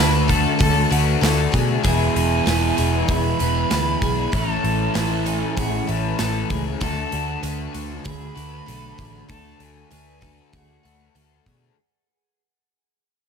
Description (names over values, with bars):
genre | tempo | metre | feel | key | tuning
rock, shoegaze and dream pop | 97 BPM | 4/4 | straight | D lydian | A4 = 440 Hz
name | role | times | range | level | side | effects
silver concert flute | melody | 0.0-11.5 s | F#5 to B5 | -28 LUFS | right 2 dB | analog delay
picked twelve-string acoustic guitar | arpeggios | 0.0-11.8 s | G#4 to A5 | -30 LUFS | right 1 dB | wide subtle chorus, analog delay
crunchy overdriven guitar | riff | 0.0-11.8 s | E2 to F#4 | -25 LUFS | left 12 dB | lush chorus
overdriven semi-hollow guitar | riff | 0.0-11.8 s | A2 to F#4 | -27 LUFS | right 12 dB | reverse reverb
picked electric bass | bass | 0.0-11.7 s | E1 to B2 | -23 LUFS | equal | none
big rock drum kit | drums | 0.3-11.6 s | hi-hat, kick drum, snare drum | -25 LUFS | right 1 dB | none
room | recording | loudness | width
small room ambience | none | -18 LUFS | side -6 dB against mid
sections
0.0-11.8 A section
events
fade-out 0.0-11.8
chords
0.0 D; 1.8 E; 4.3 A; 6.8 D